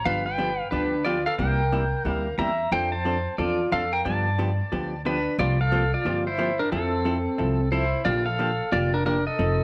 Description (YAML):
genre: country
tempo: 180 BPM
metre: 4/4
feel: swing 62% on 8ths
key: F major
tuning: A4 = 444 Hz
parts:
  - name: pedal steel guitar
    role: melody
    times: 0.0-9.6 s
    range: C4 to Bb5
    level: -27 LUFS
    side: equal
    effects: none
  - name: vintage hollow-body jazz guitar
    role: accompaniment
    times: 0.1-9.6 s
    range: C3 to C5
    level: -32 LUFS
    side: equal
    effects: none
  - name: upright bass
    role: bass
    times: 0.1-9.6 s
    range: F1 to G2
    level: -30 LUFS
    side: equal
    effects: none
room: moderate echo chamber reverb, RT60 2.0 s, small room reverb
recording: none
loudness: -25 LUFS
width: mono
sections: 0.0-9.6 A section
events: none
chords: 0.1 G7; 1.4 C7; 2.7 F6; 4.1 G7; 5.4 C9sus4; 6.7 Fmaj7; 8.1 Bb6